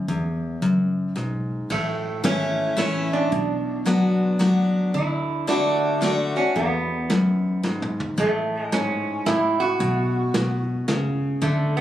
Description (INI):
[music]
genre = honky-tonk and classic country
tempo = 111 BPM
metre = 3/4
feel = swing 64% on 8ths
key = A major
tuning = A4 = 440 Hz
[part]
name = picked steel-string acoustic guitar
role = accompaniment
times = 0.0-11.8 s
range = E2 to F#4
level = -23 LUFS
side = left 2 dB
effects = none
[part]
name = vintage muted fingered electric bass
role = bass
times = 0.1-11.8 s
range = G#1 to E2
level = -30 LUFS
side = equal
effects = none
[part]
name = vintage brush drum kit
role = drums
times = 0.1-11.6 s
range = crash cymbal, hi-hat, kick drum, rim click, snare drum, toms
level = -29 LUFS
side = right 1 dB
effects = none
[part]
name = lap resonator guitar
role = second line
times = 1.7-11.8 s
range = A3 to F#4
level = -25 LUFS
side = right 3 dB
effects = none
[sound]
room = light reverb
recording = recorded on a phone in the room, club reverb, compression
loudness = -20 LUFS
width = side -12 dB against mid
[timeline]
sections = 0.0-1.7 A section; 1.7-11.8 B section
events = resonator guitar played with a steel bar solo 1.7-11.8; drum fill 7.6-8.2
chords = 0.1 E; 1.7 A; 3.3 Bm; 4.9 D; 6.6 E; 8.2 A; 9.8 B5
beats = | 0.08 0.62 1.16 | 1.70 2.24 2.78 | 3.32 3.86 4.40 | 4.94 5.48 6.02 | 6.56 7.10 7.64 | 8.18 8.72 9.26 | 9.80 10.34 10.88 | 11.42